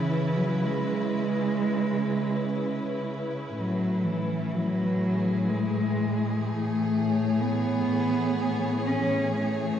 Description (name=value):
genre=ambient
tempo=62 BPM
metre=4/4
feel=straight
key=unclear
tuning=A4 = 440 Hz
part: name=dark cello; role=melody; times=0.0-9.8 s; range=E3 to C#4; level=-26 LUFS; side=equal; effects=shimmer reverb, tape echo
part: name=rich studio string section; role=sustained chords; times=0.0-9.8 s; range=A2 to C#5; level=-29 LUFS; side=equal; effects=shimmer reverb
room=wet concert hall reverb, RT60 2.2 s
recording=dark, warm production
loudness=-24 LUFS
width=side -9 dB against mid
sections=0.0-9.8 A section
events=none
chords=0.0 C#m7; 3.5 Amaj7